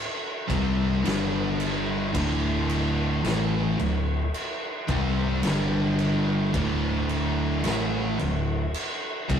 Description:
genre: stoner and doom metal.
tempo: 55 BPM.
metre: 4/4.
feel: straight.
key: unclear.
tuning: A4 = 440 Hz.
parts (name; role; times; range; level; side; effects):
distorted electric guitar; riff; 0.5-9.4 s; D2 to C4; -31 LUFS; left 1 dB; distortion.
thick fuzz guitar; riff; 0.5-9.4 s; D2 to C4; -30 LUFS; left 4 dB; distortion.
thick fuzz guitar; riff; 0.5-9.4 s; D2 to C4; -28 LUFS; right 3 dB; distortion.
hollow-body short-scale fingered electric bass; bass; 0.5-9.4 s; D1 to C2; -30 LUFS; left 1 dB; overdrive.
oversized low-tuned drum kit; drums; 0.5-9.4 s; crash cymbal, kick drum, snare drum; -30 LUFS; equal; none.
room: light reverb.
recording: rough rehearsal-room recording, warm saturation.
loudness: -23 LUFS.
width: side -8 dB against mid.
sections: 0.0-9.4 A section.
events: none.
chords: 0.0 N.C.; 1.0 G5; 2.1 D5; 5.4 G5; 6.5 D5.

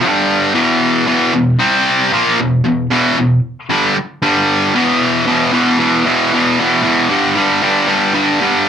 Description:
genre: rock.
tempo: 115 BPM.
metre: 4/4.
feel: straight.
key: E minor.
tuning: A4 = 439 Hz.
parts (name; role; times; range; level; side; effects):
distorted electric guitar; solo; 0.0-8.7 s; E2 to C4; -11 LUFS; equal; overdrive.
room: moderate small room reverb, RT60 0.5 s.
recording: band playing live in one room.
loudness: -11 LUFS.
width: side -8 dB against mid.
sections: 0.0-5.3 A section; 5.3-8.7 B section.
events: none.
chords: 0.0 G5; 0.6 E5; 1.6 C5; 2.1 Em; 4.2 G5; 4.8 E5; 7.1 G5.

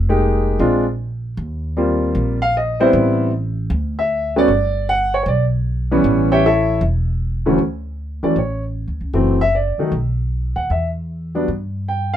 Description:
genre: jazz piano trio.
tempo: 155 BPM.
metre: 4/4.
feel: swing 66% on 8ths.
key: unclear.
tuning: A4 = 440 Hz.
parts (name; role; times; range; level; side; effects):
upright bass; bass; 0.0-12.2 s; E1 to G2; -20 LUFS; equal; none.
warm upright piano; melody; 0.1-12.2 s; D2 to G5; -16 LUFS; equal; none.
room: light reverb.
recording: minimal, uncompressed stereo recording.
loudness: -16 LUFS.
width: side -10 dB against mid.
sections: 0.0-7.6 A section; 7.6-12.2 B section.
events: none.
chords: 0.0 Fm11; 0.6 Bb9; 1.4 Eb69; 2.9 Am9; 3.7 N.C.; 4.5 G; 6.0 A7; 7.6 Dmaj7(no3); 9.1 F#m7b5; 9.9 B; 10.7 Em.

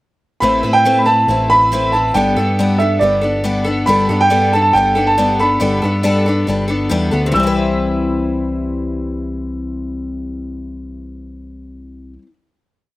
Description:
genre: folk rock and heartland rock.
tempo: 139 BPM.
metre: 4/4.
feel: straight.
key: C major.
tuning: A4 = 442 Hz.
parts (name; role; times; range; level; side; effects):
warm baby grand piano; melody; 0.4-12.2 s; D5 to E6; -15 LUFS; right 2 dB; slapback echo.
picked twelve-string acoustic guitar; accompaniment; 0.4-12.3 s; A2 to B4; -18 LUFS; left 2 dB; none.
deep dub picked electric bass; bass; 0.4-12.2 s; G1 to A2; -21 LUFS; equal; none.
room: little or no reverb.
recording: recorded outdoors, with no room sound.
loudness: -13 LUFS.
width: side -17 dB against mid.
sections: 0.4-7.3 pre-chorus; 7.3-10.8 final chord.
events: none.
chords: 0.4 Amadd9; 2.2 Gadd9; 7.3 Cmaj7.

